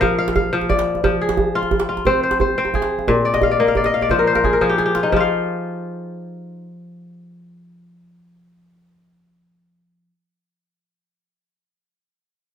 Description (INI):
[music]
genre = west african traditional, West African string and xylophone music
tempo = 117 BPM (dotted quarters)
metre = 12/8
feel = straight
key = unclear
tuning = A4 = 440 Hz
[part]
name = kora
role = arpeggios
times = 0.0-10.2 s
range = Bb2 to F5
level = -17 LUFS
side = left 2 dB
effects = none
[part]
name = djembe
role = percussion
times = 0.0-5.3 s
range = none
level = -22 LUFS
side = right 3 dB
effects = none
[sound]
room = wet studio reverb, RT60 0.5 s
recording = heard from further back in the room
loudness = -16 LUFS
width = side -8 dB against mid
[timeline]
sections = 0.0-5.1 A section; 5.1-9.2 B section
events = kora fill 3.2-5.1; drum fill 4.6-5.1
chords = 0.0 Bb; 1.0 Fm; 3.1 Bb5; 5.1 N.C.